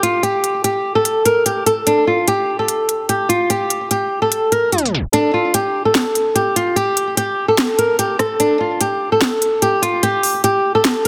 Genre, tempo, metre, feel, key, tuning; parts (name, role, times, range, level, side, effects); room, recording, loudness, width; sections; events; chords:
hip hop, trap; 147 BPM; 4/4; half-time; G minor; A4 = 441 Hz
flamenco guitar; melody; 0.0-11.1 s; D4 to Bb4; -18 LUFS; equal; delay
trap drum kit; drums; 0.0-11.1 s; hi-hat, rim click, snare drum; -21 LUFS; equal
moderate lush hall reverb, RT60 1.9 s; dense, heavily limited modern master, tape stop; -17 LUFS; mono
0.0-5.1 A section; 5.1-11.1 B section
tape stop 4.7-5.1; kick muted 5.1-11.1